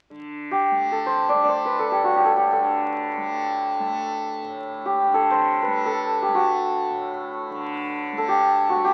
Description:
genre	indian classical, Hindustani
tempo	free time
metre	none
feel	none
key	A raga bageshri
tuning	A4 = 440 Hz
part	tanpura	drone	0.1-8.9 s	A2 to A3	-34 LUFS	equal	none
part	santur	melody	0.5-8.9 s	F#4 to D5	-23 LUFS	equal	none
room	wet studio reverb, RT60 0.9 s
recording	very old 78 rpm record, vinyl crackle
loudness	-23 LUFS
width	mono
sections	0.1-8.9 A section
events	none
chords	none

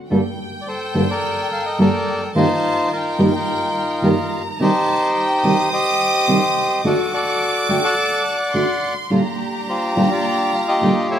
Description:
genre	tango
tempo	107 BPM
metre	4/4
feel	rubato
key	G minor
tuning	A4 = 436 Hz
part	rich studio violin section	second line	0.1-11.2 s	G5 to Eb6	-25 LUFS	equal	tape echo
part	nylon-string guitar	accompaniment	0.1-10.9 s	G2 to A4	-20 LUFS	right 1 dB	none
part	bandoneon	melody	0.6-11.2 s	Eb4 to A5	-19 LUFS	equal	none
part	warm studio string section	stabs	9.1-11.1 s	Bb3 to G4	-27 LUFS	right 2 dB	none
room	moderate concert hall reverb, RT60 1.9 s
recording	close, detailed microphones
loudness	-16 LUFS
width	side -9 dB against mid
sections	0.1-11.2 A section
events	none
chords	0.1 Gmadd9; 2.4 Ebadd9/G; 4.6 Cm; 6.8 D; 9.1 Bb6

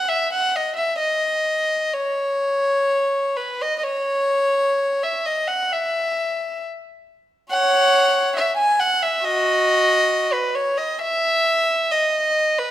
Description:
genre	classical, free, expressive piece for unaccompanied violin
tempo	61-70 BPM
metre	4/4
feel	rubato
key	C# minor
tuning	A4 = 440 Hz
part	rich violin	solo	0.0-12.7 s	F#4 to G#5	-18 LUFS	equal	none
room	moderate recital hall reverb, RT60 1.5 s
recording	minimal, uncompressed stereo recording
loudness	-18 LUFS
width	side -12 dB against mid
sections	0.0-12.7 A section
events	none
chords	none

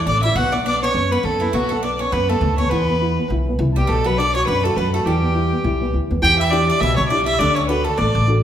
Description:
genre	celtic folk, Celtic reel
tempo	204 BPM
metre	4/4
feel	swing 57% on 8ths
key	E dorian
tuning	A4 = 441 Hz
part	Irish bouzouki	second line	0.0-8.2 s	E3 to G4	-28 LUFS	right 2 dB	none
part	wooden whistle	second line	0.0-8.3 s	E5 to G6	-29 LUFS	left 6 dB	none
part	dark upright piano	accompaniment	0.0-8.4 s	B2 to A4	-23 LUFS	left 1 dB	none
part	rich fiddle	melody	0.1-8.3 s	E4 to G5	-20 LUFS	equal	none
part	upright bass	bass	0.1-8.4 s	A1 to F#2	-21 LUFS	equal	none
room	wet large studio reverb, RT60 1.3 s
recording	band playing live in one room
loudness	-16 LUFS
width	side -10 dB against mid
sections	0.0-6.2 A section; 6.2-8.4 B section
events	none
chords	0.4 Bm; 2.7 E5; 3.9 Bm; 5.1 Em; 6.2 Em7; 7.4 D

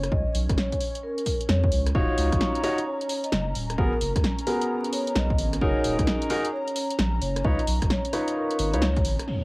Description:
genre	UK garage, two-step garage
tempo	131 BPM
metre	4/4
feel	swing 64% on 16ths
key	unclear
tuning	A4 = 438 Hz
part	vibraphone with soft mallets	melody	0.0-9.4 s	Bb4 to Eb5	-32 LUFS	equal	vintage 12-bit sampler grit, cassette tape
part	airy breathy pad	sustained chords	0.0-9.4 s	Bb3 to Bb5	-35 LUFS	equal	chorus, sidechain pumping, cassette tape
part	saturated sub bass	bass	0.0-9.2 s	Eb1 to F2	-26 LUFS	equal	none
part	punchy analog drum machine	drums	0.0-9.4 s	crash cymbal, hi-hat, rim click, snare drum	-30 LUFS	equal	low-pass filter on hats, cassette tape, low-pass filter on snare, low-pass filter on cymbals, low-pass filter on room
part	electronic kick drum	drums	0.1-9.0 s	none	-26 LUFS	equal	cassette tape
part	dark grand piano	stabs	1.9-8.8 s	Cb4 to Db5	-27 LUFS	equal	cassette tape
part	impact	sound effects	9.3-9.4 s	none	-27 LUFS	equal	none
room	light reverb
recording	home recording on cassette, vinyl crackle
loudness	-22 LUFS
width	side -24 dB against mid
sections	0.0-9.3 A section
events	band accent 8.8; impact 9.3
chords	0.1 N.C.; 1.9 Ebm9; 3.8 Abm9; 5.6 Gb69; 7.4 Db9

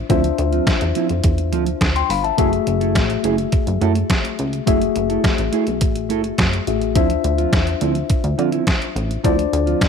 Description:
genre	early-eighties boogie funk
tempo	105 BPM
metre	4/4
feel	straight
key	unclear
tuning	A4 = 440 Hz
part	mellow tine electric piano	accompaniment	0.0-9.9 s	A3 to C6	-21 LUFS	left 14 dB	none
part	plucky analog bass	bass	0.0-9.7 s	F#1 to D3	-22 LUFS	right 1 dB	none
part	mellow electric guitar	riff	0.1-9.8 s	F3 to A4	-23 LUFS	right 14 dB	wide subtle chorus
part	detuned 8-bit digital drum machine	drums	0.1-9.9 s	hi-hat, kick drum, snare drum	-19 LUFS	equal	none
room	little or no reverb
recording	1960s-style stereo with parts hard left and right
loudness	-16 LUFS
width	side -6 dB against mid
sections	0.0-9.9 A section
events	none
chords	0.0 Dm9; 2.4 F#m9; 7.0 Dm9

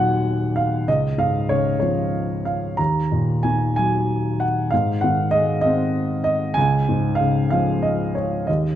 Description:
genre	classical, lyrical solo piano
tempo	63 BPM (dotted quarters)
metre	6/8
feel	rubato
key	unclear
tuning	A4 = 440 Hz
part	dark baby grand piano	solo	0.0-8.8 s	Db2 to Bb5	-18 LUFS	equal	none
room	moderate recital hall reverb, RT60 1.6 s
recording	dark, warm production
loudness	-18 LUFS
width	side -11 dB against mid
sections	0.0-8.8 A section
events	none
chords	0.0 Ebm; 0.9 Db; 2.8 Ebm; 4.7 Ab; 6.6 Db

